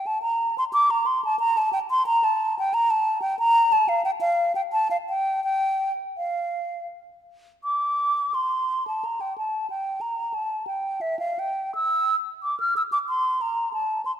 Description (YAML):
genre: classical, baroque-style fantasia for unaccompanied flute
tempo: 81-94 BPM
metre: 3/4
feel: rubato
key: Bb major, F major from 3.4 s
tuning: A4 = 435 Hz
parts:
  - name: mellow hollow silver concert flute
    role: solo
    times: 0.0-14.1 s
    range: E5 to F6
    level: -22 LUFS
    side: equal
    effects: none
room: moderate concert hall reverb, RT60 1.9 s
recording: dark, warm production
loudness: -22 LUFS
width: side -10 dB against mid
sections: 0.0-7.6 A section; 7.6-14.2 B section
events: none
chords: none